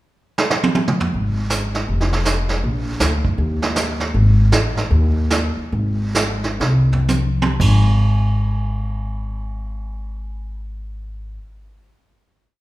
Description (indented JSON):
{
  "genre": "jazz piano trio",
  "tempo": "111-159 BPM",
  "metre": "4/4",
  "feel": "swing 64% on 8ths",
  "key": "Ab major",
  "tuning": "A4 = 440 Hz",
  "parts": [
    { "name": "vintage brush drum kit", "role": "drums", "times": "0.4-7.8 s", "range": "brushed snare drum, crash cymbal, hi-hat, kick drum, snare drum, toms", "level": "-20 LUFS", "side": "right 2 dB", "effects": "none" },
    { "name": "upright bass", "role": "bass", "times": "1.1-11.4 s", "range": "F1 to Eb2", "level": "-18 LUFS", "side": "equal", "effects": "none" }
  ],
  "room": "wet recital hall reverb, RT60 1.4 s",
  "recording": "recorded in a church or concert hall",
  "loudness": "-16 LUFS",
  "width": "side -17 dB against mid",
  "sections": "0.0-1.1 pickup bar; 1.1-7.6 A section; 7.6-11.9 final note",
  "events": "drum fill 0.4-1.1, 6.6-7.6; slowing down 4.2-7.6",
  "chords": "none"
}